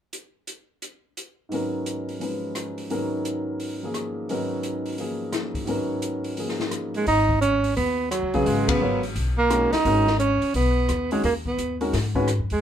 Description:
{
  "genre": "modal jazz",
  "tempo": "173 BPM",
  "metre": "4/4",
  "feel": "swing 64% on 8ths",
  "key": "G# dorian",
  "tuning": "A4 = 442 Hz",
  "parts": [
    { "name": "open jazz drum kit", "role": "drums", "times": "0.1-12.6 s", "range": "hi-hat, kick drum, ride cymbal, rim click, snare drum", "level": "-32 LUFS", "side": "left 2 dB", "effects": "none" },
    { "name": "warm grand piano", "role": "accompaniment", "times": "1.5-12.3 s", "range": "G#2 to C#5", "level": "-26 LUFS", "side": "left 1 dB", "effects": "none" },
    { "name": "breathy tenor saxophone", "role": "melody", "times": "7.0-12.6 s", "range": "F#3 to D#4", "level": "-22 LUFS", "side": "right 2 dB", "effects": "none" },
    { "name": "upright bass", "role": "bass", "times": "7.1-12.6 s", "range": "G#1 to G#2", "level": "-26 LUFS", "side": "left 1 dB", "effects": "none" }
  ],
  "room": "light reverb",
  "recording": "minimal, uncompressed stereo recording",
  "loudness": "-22 LUFS",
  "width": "side -9 dB against mid",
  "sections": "0.1-1.5 A section; 1.5-7.1 B section; 7.1-12.6 C section",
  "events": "band accent 8.6",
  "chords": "0.1 N.C.; 1.5 G#m11"
}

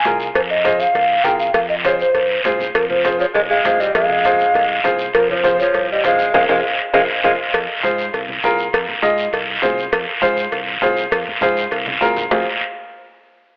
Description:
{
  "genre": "latin, cumbia",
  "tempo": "201 BPM",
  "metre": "4/4",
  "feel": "straight",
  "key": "F minor",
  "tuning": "A4 = 440 Hz",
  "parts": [
    { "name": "breathy alto ocarina", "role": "melody", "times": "0.0-7.3 s", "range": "Bb4 to Ab5", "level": "-20 LUFS", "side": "equal", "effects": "none" },
    { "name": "fingered electric bass", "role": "bass", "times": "0.0-12.5 s", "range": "F1 to Ab2", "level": "-37 LUFS", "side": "equal", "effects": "none" },
    { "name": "guiro", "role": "percussion", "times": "0.0-12.4 s", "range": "none", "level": "-26 LUFS", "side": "equal", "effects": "none" },
    { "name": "bright upright piano", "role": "accompaniment", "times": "0.1-12.5 s", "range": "F4 to Eb5", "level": "-22 LUFS", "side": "equal", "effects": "none" },
    { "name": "congas", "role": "percussion", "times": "0.1-12.4 s", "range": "none", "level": "-39 LUFS", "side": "equal", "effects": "none" },
    { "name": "cowbell and timbales", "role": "percussion", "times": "0.1-12.4 s", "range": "none", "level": "-25 LUFS", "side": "equal", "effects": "none" },
    { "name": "breathy tenor saxophone", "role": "second line", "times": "2.7-7.3 s", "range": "F3 to Ab3", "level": "-24 LUFS", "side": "equal", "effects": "none" }
  ],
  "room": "wet spring reverb, RT60 1.9 s, small room ambience",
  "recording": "worn, warbling old tape, cassette tape, warbly pitch drift, telephone sound",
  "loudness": "-17 LUFS",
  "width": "mono",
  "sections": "0.0-7.5 A section; 7.5-12.3 B section; 12.3-13.5 C section",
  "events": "drum fill 6.3-7.5, 11.9-12.3; band accent 6.3-7.5",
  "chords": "0.0 Fm"
}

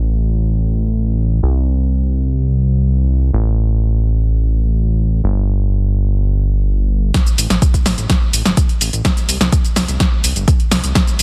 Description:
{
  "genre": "progressive house",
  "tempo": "126 BPM",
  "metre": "4/4",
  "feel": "straight",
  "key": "unclear",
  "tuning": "A4 = 440 Hz",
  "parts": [
    { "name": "fat analog bass", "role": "bass", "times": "0.0-11.2 s", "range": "G1 to C2", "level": "-17 LUFS", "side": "equal", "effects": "sidechain pumping" },
    { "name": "deep house drum kit", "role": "drums", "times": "7.1-11.2 s", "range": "hi-hat, shaker, snare drum", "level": "-19 LUFS", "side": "equal", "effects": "overdrive" },
    { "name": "electronic kick drum", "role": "drums", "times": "7.1-11.1 s", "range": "none", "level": "-17 LUFS", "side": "equal", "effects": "overdrive" }
  ],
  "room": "little or no reverb",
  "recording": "dense, heavily limited modern master, low-pass filter",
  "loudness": "-16 LUFS",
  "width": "mono",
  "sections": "0.0-7.1 A section; 7.1-11.2 B section",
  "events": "filter sweep 0.0-7.1; build-up 7.1-11.2; drum fill 7.1-11.2",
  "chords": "none"
}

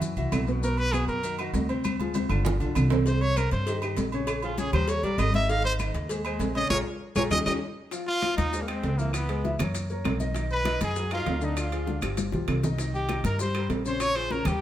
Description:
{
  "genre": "Afro-Cuban jazz",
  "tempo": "197 BPM",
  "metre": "4/4",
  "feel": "straight",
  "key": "Ab major",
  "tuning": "A4 = 440 Hz",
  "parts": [
    { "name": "warm concert grand piano", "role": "accompaniment", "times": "0.0-14.6 s", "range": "B2 to F5", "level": "-32 LUFS", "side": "left 2 dB", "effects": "none" },
    { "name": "upright bass", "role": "bass", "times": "0.0-14.6 s", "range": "G1 to G2", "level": "-29 LUFS", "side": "equal", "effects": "none" },
    { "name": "congas", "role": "percussion", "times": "0.0-14.6 s", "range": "none", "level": "-33 LUFS", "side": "left 2 dB", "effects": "none" },
    { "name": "maracas", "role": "percussion", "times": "0.0-14.6 s", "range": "none", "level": "-43 LUFS", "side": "left 5 dB", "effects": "none" },
    { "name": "agogo bells and timbales", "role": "percussion", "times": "0.2-14.6 s", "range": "none", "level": "-34 LUFS", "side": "right 6 dB", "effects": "none" },
    { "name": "claves", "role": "percussion", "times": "0.3-14.6 s", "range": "none", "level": "-40 LUFS", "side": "left 2 dB", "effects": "none" },
    { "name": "clear trumpet", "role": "melody", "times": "0.6-14.6 s", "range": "Bb3 to F5", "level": "-29 LUFS", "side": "equal", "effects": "none" },
    { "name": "cowbell and bongos", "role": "percussion", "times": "3.1-14.6 s", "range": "none", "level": "-38 LUFS", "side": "left 3 dB", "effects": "none" },
    { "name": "breathy bright jazz flute", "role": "second line", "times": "8.1-14.6 s", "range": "Bb4 to Db6", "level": "-37 LUFS", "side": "left 2 dB", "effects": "none" }
  ],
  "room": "moderate stone room reverb, RT60 1.2 s",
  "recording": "band playing live in one room",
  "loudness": "-24 LUFS",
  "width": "side -12 dB against mid",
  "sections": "0.0-7.9 A section; 7.9-14.6 B section",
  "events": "trumpet solo 0.0-7.9; drum fill 1.8-3.1, 7.2-7.9, 11.9-12.8; band accent 6.7-7.9",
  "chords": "0.0 Bsus4; 0.6 Bmaj7; 1.8 Dm7b5; 2.5 G7; 3.1 Cm7; 4.3 Bbm7; 4.9 Eb; 5.5 Abadd9; 6.7 Bb7(no3); 7.3 Eb7; 7.9 Ab6; 9.1 Dbm7; 9.7 Gb6; 10.4 Bmaj7; 11.6 Ddim; 12.2 G7b13; 12.8 Cm7; 14.0 Bbm7"
}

